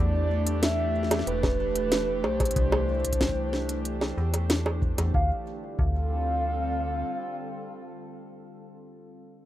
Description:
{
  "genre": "IDM",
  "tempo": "93 BPM",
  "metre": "4/4",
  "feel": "straight",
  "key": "D minor",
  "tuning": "A4 = 441 Hz",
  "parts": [
    { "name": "warbly nostalgic lead", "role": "melody", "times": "0.0-8.5 s", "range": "B4 to F5", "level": "-30 LUFS", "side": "right 1 dB", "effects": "chorus, ping-pong delay" },
    { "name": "warbly tape-like pad", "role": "sustained chords", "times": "0.0-8.5 s", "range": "D3 to C5", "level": "-33 LUFS", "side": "equal", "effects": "chorus, built-in reverb, vintage 12-bit sampler grit" },
    { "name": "metallic FM bass", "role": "bass", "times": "0.0-7.0 s", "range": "E1 to E2", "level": "-28 LUFS", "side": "equal", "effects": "none" },
    { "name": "organic electronic drum kit", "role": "drums", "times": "0.5-5.1 s", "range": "bongos, hi-hat, snare drum", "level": "-27 LUFS", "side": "equal", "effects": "none" },
    { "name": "electronic kick drum", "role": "drums", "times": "1.4-6.0 s", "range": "none", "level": "-28 LUFS", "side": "equal", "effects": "overdrive" }
  ],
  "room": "moderate studio ambience, RT60 0.5 s",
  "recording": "rough home demo mix",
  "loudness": "-24 LUFS",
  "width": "side -13 dB against mid",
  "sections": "0.0-5.1 A section; 5.1-7.7 B section",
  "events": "none",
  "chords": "0.0 Em; 2.6 C; 5.1 Dm"
}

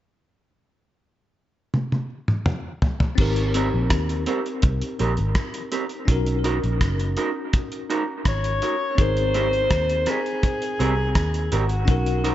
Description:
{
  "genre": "lovers rock reggae",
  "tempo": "83 BPM",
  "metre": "4/4",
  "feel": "straight",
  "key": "Ab major",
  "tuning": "A4 = 439 Hz",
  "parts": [
    { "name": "cloth-damped thuddy drum kit", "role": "drums", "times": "1.7-12.3 s", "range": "crash cymbal, hi-hat, kick drum, rim click, toms", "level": "-23 LUFS", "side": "equal", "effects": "gated reverb" },
    { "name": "bell-like tine electric piano", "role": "accompaniment", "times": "3.2-12.3 s", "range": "C4 to Bb4", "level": "-29 LUFS", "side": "left 3 dB", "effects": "medium stereo tremolo, tape echo" },
    { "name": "vintage muted fingered electric bass", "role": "bass", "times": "3.2-12.3 s", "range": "F#1 to Eb2", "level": "-24 LUFS", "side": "equal", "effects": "none" },
    { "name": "electric guitar through a small old amp", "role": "stabs", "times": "3.5-12.3 s", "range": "C4 to Bb4", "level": "-28 LUFS", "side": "right 4 dB", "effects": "lush chorus, tape echo" },
    { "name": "breathy alto saxophone", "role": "melody", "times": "8.3-12.3 s", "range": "Gb4 to Db5", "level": "-24 LUFS", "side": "left 1 dB", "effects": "tape echo" }
  ],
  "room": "light reverb",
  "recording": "nothing above 7.7 kHz",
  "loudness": "-20 LUFS",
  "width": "side -13 dB against mid",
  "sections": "0.3-3.2 A section; 3.2-9.0 B section; 9.0-12.3 C section",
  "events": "drum fill 1.7-3.2",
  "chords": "0.3 N.C.; 3.2 Abmaj9; 6.1 Bmaj7; 9.0 Abmaj9"
}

